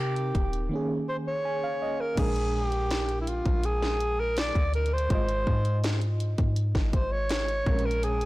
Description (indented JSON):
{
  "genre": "contemporary R&B",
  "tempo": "82 BPM",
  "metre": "4/4",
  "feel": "straight",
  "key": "unclear",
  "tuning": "A4 = 440 Hz",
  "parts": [
    { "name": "breathy alto saxophone", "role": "melody", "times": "0.0-8.3 s", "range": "E4 to D5", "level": "-30 LUFS", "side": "equal", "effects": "digital delay" },
    { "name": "FM electric piano with tremolo", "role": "accompaniment", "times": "0.0-8.3 s", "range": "Ab2 to Ab5", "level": "-34 LUFS", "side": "right 2 dB", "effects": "none" },
    { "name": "soft 808-style bass", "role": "bass", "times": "0.0-8.3 s", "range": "Eb1 to C3", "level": "-28 LUFS", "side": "equal", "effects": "none" },
    { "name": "trap drum kit", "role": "drums", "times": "0.2-8.3 s", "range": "crash cymbal, hi-hat, kick drum, snare drum", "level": "-29 LUFS", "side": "equal", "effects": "soft clipping on snare" }
  ],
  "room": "little or no reverb",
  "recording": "blown-out, overdriven recording, overdrive",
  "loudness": "-25 LUFS",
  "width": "side -18 dB against mid",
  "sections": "0.0-2.2 A section; 2.2-8.3 B section",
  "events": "silent gap 0.7-2.2; FM electric piano fill 1.1-2.2",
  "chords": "0.0 Cm7; 0.7 Eb7sus4; 2.2 Bb7; 5.1 Ab6; 7.7 Bbm7",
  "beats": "0.71 1.45 | 2.18 2.91 3.64 4.37 | 5.10 5.84 6.57 7.30 | 8.03"
}